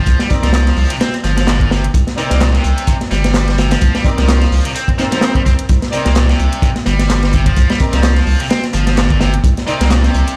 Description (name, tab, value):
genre	breakbeat, breaks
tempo	128 BPM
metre	4/4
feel	swing 56% on 16ths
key	C minor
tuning	A4 = 443 Hz
part	tight distorted guitar	riff	0.0-10.4 s	Bb2 to C4	-22 LUFS	equal	distortion, tube saturation, delay
part	saturated sub bass	bass	0.1-10.2 s	G1 to C2	-16 LUFS	equal	none
part	crunchy breakbeat drum kit	drums	0.1-10.4 s	hi-hat, kick drum, snare drum	-18 LUFS	equal	none
part	garage drum kit	drums	0.1-10.4 s	handclaps, hi-hat	-30 LUFS	equal	none
part	clear studio string section	stabs	0.3-9.8 s	C4 to D5	-25 LUFS	equal	delay
room	studio ambience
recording	played on a big sound system in a bare room, stone room reverb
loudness	-14 LUFS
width	mono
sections	0.0-10.4 A section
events	none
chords	0.0 C7(no3)